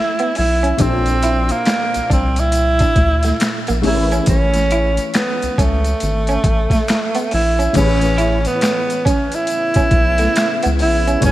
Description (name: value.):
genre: R&B, neo-soul.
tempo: 69 BPM.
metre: 4/4.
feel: swing 62% on 16ths.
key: A major.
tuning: A4 = 443 Hz.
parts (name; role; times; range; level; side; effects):
breathy tenor saxophone; melody; 0.0-11.3 s; A3 to E4; -18 LUFS; right 2 dB; none.
dark upright piano; accompaniment; 0.0-11.3 s; A2 to C#5; -23 LUFS; left 2 dB; ensemble chorus.
electric guitar through a small old amp; second line; 0.2-11.2 s; A3 to E4; -25 LUFS; right 2 dB; analog chorus.
boom bap sampler-style drum kit; drums; 0.2-11.3 s; crash cymbal, finger snaps, hi-hat, kick drum, snare drum; -19 LUFS; equal; overdrive.
rubbery square bass; bass; 0.4-11.3 s; G#1 to D2; -18 LUFS; equal; none.
tube shaker and finger snaps; percussion; 0.8-11.3 s; none; -30 LUFS; left 2 dB; none.
warm trombone section; stabs; 9.5-11.3 s; C#3 to E4; -25 LUFS; left 4 dB; digital delay.
room: light reverb, small room ambience.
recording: bright 1980s-style digital production, vinyl crackle.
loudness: -14 LUFS.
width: side -15 dB against mid.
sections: 0.0-7.8 A section; 7.8-11.3 A section.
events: none.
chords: 0.0 Amaj9; 0.8 Bbmaj9; 3.8 Amaj9.